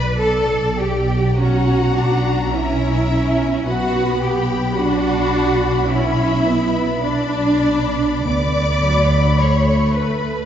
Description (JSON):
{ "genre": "classical, slow romantic movement for string orchestra", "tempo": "47-55 BPM", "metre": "4/4", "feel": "rubato", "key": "B minor", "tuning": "A4 = 440 Hz", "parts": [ { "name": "warm symphonic violin section", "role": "melody", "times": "0.0-10.5 s", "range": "D5 to B5", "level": "-27 LUFS", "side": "left 6 dB", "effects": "none" }, { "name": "warm symphonic violin section", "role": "second line", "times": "0.0-10.5 s", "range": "D5 to D6", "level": "-27 LUFS", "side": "left 2 dB", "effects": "none" }, { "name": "rich symphonic cello section", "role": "bass", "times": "0.0-10.5 s", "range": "D4 to D5", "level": "-20 LUFS", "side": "right 1 dB", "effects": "none" }, { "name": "warm symphonic double bass section", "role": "bass", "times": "0.0-10.5 s", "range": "B1 to D2", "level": "-19 LUFS", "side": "right 1 dB", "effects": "none" }, { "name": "rich symphonic viola section", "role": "accompaniment", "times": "1.4-10.5 s", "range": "F#3 to D4", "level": "-22 LUFS", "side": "right 1 dB", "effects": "none" } ], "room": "wet scoring stage reverb, RT60 1.7 s", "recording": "heard from further back in the room, nothing above 7.9 kHz", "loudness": "-15 LUFS", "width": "side -9 dB against mid", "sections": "0.0-10.5 A section", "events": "none", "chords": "0.0 Bm; 1.4 F#/B; 3.7 Bm; 8.3 Bm/D", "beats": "0.20 1.37 2.52 | 3.65 4.76 5.89 7.03 | 8.26 9.39" }